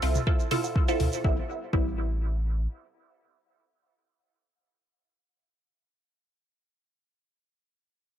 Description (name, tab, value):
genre	dub techno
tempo	123 BPM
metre	4/4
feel	straight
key	A minor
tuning	A4 = 440 Hz
part	filtered dub chord stab	stabs	0.0-6.2 s	G3 to A4	-29 LUFS	right 2 dB	phaser, sidechain pumping, dub echo
part	soft dub sub bass	bass	0.0-2.7 s	A1 to D2	-28 LUFS	equal	sidechain pumping
part	electronic hi-hat and shaker	drums	0.0-1.2 s	none	-39 LUFS	right 2 dB	none
part	electronic toms and woodblock	percussion	0.2-1.1 s	none	-36 LUFS	left 2 dB	sidechain pumping on toms, sidechain pumping on perc, dub echo
part	electronic kick drum	drums	0.3-1.9 s	none	-26 LUFS	equal	none
room	light reverb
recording	echo-heavy mix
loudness	-25 LUFS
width	side -10 dB against mid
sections	0.0-1.2 A section; 1.2-5.1 B section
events	none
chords	0.0 Dm7 (rootless); 1.2 Am7